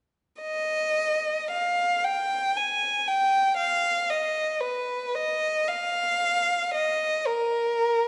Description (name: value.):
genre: classical, free, expressive piece for unaccompanied violin.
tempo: 38 BPM (dotted quarters).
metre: 6/8.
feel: rubato.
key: Eb major.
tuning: A4 = 440 Hz.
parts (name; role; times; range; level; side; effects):
warm violin; solo; 0.4-8.1 s; Bb4 to Ab5; -26 LUFS; equal; none.
room: moderate recital hall reverb, RT60 1.6 s.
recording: nothing above 10.9 kHz.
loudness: -26 LUFS.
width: mono.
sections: 0.4-8.1 A section.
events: none.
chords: none.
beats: | 0.43 2.05 | 3.58 5.14 | 6.74.